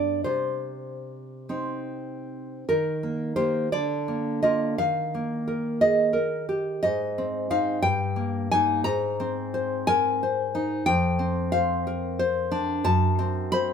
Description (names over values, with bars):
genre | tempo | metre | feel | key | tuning
romantic piece for solo classical guitar | 48-62 BPM (dotted quarters) | 6/8 | rubato | Eb major | A4 = 440 Hz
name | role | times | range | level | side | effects
nylon-string guitar | solo | 0.0-13.7 s | F2 to B5 | -23 LUFS | equal | none
room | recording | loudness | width
light reverb | band playing live in one room | -23 LUFS | side -7 dB against mid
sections
0.0-2.7 A section; 2.7-13.7 B section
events
none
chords
0.2 Cm; 2.7 Eb; 3.7 Bb/D; 4.8 Eb; 6.8 Ab; 7.8 Eb/G; 8.9 Ab; 10.9 Fsus24; 12.8 F#dim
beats
| 0.25 1.49 | 2.68 3.71 | 4.77 5.80 | 6.83 7.85 | 8.87 9.88 | 10.87 11.86 | 12.84